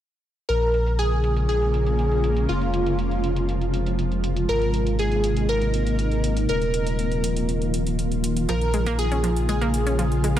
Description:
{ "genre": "progressive house", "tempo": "120 BPM", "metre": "4/4", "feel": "straight", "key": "unclear", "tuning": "A4 = 440 Hz", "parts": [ { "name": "plucky unison lead", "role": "melody", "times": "0.5-10.4 s", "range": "F4 to Bb4", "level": "-26 LUFS", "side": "equal", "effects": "tape echo" }, { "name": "shimmering ambient pad", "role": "sustained chords", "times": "1.0-10.4 s", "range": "C3 to F4", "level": "-26 LUFS", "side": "equal", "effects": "chorus, built-in reverb" }, { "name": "saturated sub bass", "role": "bass", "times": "0.5-10.4 s", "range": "Eb1 to Bb1", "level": "-24 LUFS", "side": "equal", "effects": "tube saturation" }, { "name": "electronic hi-hat", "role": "drums", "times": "0.5-10.4 s", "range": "none", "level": "-37 LUFS", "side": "right 1 dB", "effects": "overdrive, low-pass filter on hats" }, { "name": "analog pluck", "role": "arpeggios", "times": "8.5-10.4 s", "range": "F3 to Db4", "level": "-27 LUFS", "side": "right 1 dB", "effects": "chorus, tape echo" } ], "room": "digital ambience", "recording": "none", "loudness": "-20 LUFS", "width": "side -11 dB against mid", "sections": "0.5-10.4 A section", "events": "none", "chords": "0.5 Bbm7; 2.5 Fm; 4.5 Abadd9; 6.5 Ebsus2; 8.5 Bbm7", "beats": "| 0.49 0.99 1.49 1.99 | 2.49 2.99 3.49 3.99 | 4.49 4.99 5.49 5.99 | 6.49 6.99 7.49 7.99 | 8.49 8.99 9.49 9.99" }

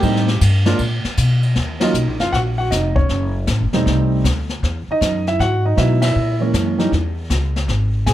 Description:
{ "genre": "jazz piano trio", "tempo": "157 BPM", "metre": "4/4", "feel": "swing 65% on 8ths", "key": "unclear", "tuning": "A4 = 440 Hz", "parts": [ { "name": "dark baby grand piano", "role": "melody", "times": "0.0-8.1 s", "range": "Fb3 to Ab5", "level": "-19 LUFS", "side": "right 2 dB", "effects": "plate reverb" }, { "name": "upright bass", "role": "bass", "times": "0.0-8.1 s", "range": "Fb1 to B2", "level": "-18 LUFS", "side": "equal", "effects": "none" }, { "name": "jazz brush drum kit", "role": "drums", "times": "0.0-8.1 s", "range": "brushed snare drum, hi-hat, kick drum, ride cymbal, snare drum", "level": "-23 LUFS", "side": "left 2 dB", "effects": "none" } ], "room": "light reverb", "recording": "none", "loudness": "-15 LUFS", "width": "side -13 dB against mid", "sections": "0.0-1.6 A section; 1.6-8.1 B section", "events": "band accent 1.8, 6.0", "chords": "0.0 Am7b5; 0.8 N.C.; 1.6 Ebm7; 3.1 Gbm7; 3.9 Cm69; 4.6 Emaj9; 6.2 Bbm7b5; 6.9 Dbm", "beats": "| 0.03 0.42 0.80 1.18 | 1.56 1.95 2.33 2.71 | 3.09 3.48 3.86 4.24 | 4.62 5.00 5.39 5.77 | 6.15 6.54 6.92 7.30 | 7.68 8.06" }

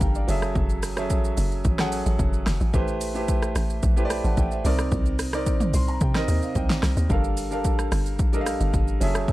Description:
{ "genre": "amapiano", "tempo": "110 BPM", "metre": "4/4", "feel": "straight", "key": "unclear", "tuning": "A4 = 441 Hz", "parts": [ { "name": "warm concert grand piano", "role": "accompaniment", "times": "0.0-9.3 s", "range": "C3 to C6", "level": "-27 LUFS", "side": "right 1 dB", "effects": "none" }, { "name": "hollow log drum bass", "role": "bass", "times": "0.0-9.3 s", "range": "F#1 to C3", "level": "-25 LUFS", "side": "equal", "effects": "none" }, { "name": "deep house drum kit", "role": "drums", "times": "0.0-9.3 s", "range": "hi-hat, kick drum, rim click, shaker, snare drum, toms", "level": "-25 LUFS", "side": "equal", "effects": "overdrive" } ], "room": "little or no reverb", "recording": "dark, warm production", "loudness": "-21 LUFS", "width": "side -17 dB against mid", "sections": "0.0-9.3 A section", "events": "grand piano fill 5.5-7.1", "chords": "0.3 F#m9; 2.7 Am9; 4.6 Cm9; 7.1 Gm9", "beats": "0.01 | 0.56 1.10 1.65 2.19 | 2.74 3.28 3.83 4.37 | 4.92 5.46 6.01 6.55 | 7.10 7.65 8.19 8.74 | 9.28" }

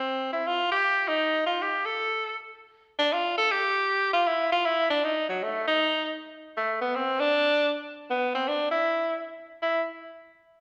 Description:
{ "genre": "jazz", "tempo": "158 BPM", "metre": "4/4", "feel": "swing 64% on 8ths", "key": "unclear", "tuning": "A4 = 440 Hz", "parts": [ { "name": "bright tenor saxophone", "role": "solo", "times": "0.0-9.8 s", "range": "F#3 to A4", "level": "-26 LUFS", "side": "equal", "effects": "none" } ], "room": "wet recital hall reverb, RT60 1.6 s", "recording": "recorded in a church or concert hall", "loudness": "-26 LUFS", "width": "mono", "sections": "0.0-6.5 A section; 6.5-9.6 B section; 9.6-10.6 C section", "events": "none", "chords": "none", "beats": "0.06 | 0.45 0.83 1.21 1.59 | 1.97 2.35 2.73 3.11 | 3.49 3.87 4.25 4.63 | 5.02 5.40 5.78 6.16 | 6.54 6.92 7.30 7.68 | 8.07 8.45 8.83 9.21 | 9.59" }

